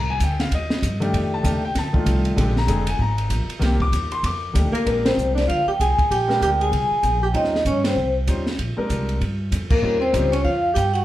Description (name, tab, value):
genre	jazz, small-group swing and bop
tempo	193 BPM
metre	4/4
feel	swing 61% on 8ths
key	Bb mixolydian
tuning	A4 = 440 Hz
part	warm grand piano	accompaniment	0.0-10.3 s	D3 to D6	-25 LUFS	left 2 dB	none
part	upright bass	bass	0.0-11.0 s	F1 to G2	-23 LUFS	equal	none
part	compact cocktail drum kit	drums	0.2-11.0 s	crash cymbal, hi-hat, kick drum, ride cymbal, snare drum	-26 LUFS	equal	none
part	vibraphone with medium hard mallets	melody	4.7-11.0 s	Bb4 to Ab5	-21 LUFS	left 1 dB	none
part	breathy tenor saxophone	second line	4.7-11.0 s	Bb3 to Ab4	-24 LUFS	right 2 dB	none
room	wet club reverb, RT60 0.6 s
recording	heard from further back in the room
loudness	-18 LUFS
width	side -14 dB against mid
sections	0.0-4.9 A section; 4.9-11.0 B section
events	band accent 5.0, 7.8, 9.7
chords	0.0 Cm; 1.1 F13; 2.4 Bb13; 3.6 Cm7; 4.2 F13; 4.9 Bb13; 7.3 Eb13; 8.6 Bb13; 9.8 Eb13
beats	0.20 0.51 0.82 | 1.13 1.44 1.75 2.06 | 2.37 2.68 2.99 3.30 | 3.61 3.92 4.23 4.54 | 4.85 5.16 5.47 5.79 | 6.10 6.41 6.72 7.03 | 7.34 7.65 7.96 8.27 | 8.58 8.89 9.20 9.52 | 9.83 10.14 10.45 10.76